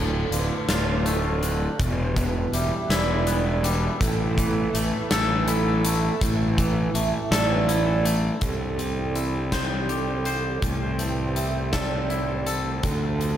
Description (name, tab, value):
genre	post-rock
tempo	54 BPM (dotted quarters)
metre	6/8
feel	straight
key	unclear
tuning	A4 = 441 Hz
part	analog string pad	sustained chords	0.0-13.4 s	D3 to G4	-35 LUFS	equal	ensemble chorus
part	twangy electric guitar	arpeggios	0.0-13.4 s	D2 to C5	-28 LUFS	left 2 dB	digital delay
part	vibraphone with soft mallets	arpeggios	0.0-13.4 s	A4 to E5	-31 LUFS	right 6 dB	digital delay
part	fuzz fingered electric bass	bass	0.0-13.4 s	D1 to D2	-25 LUFS	equal	overdrive
part	huge arena drum kit	drums	0.3-13.4 s	hi-hat, kick drum, snare drum	-28 LUFS	equal	none
room	moderate large studio reverb, RT60 1.4 s, studio reverb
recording	none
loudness	-21 LUFS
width	side -10 dB against mid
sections	0.0-8.4 A section; 8.4-13.4 B section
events	none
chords	0.0 Dm; 1.8 Em; 4.0 Asus2; 8.4 Cadd9; 10.6 Am7/C; 12.8 Dm7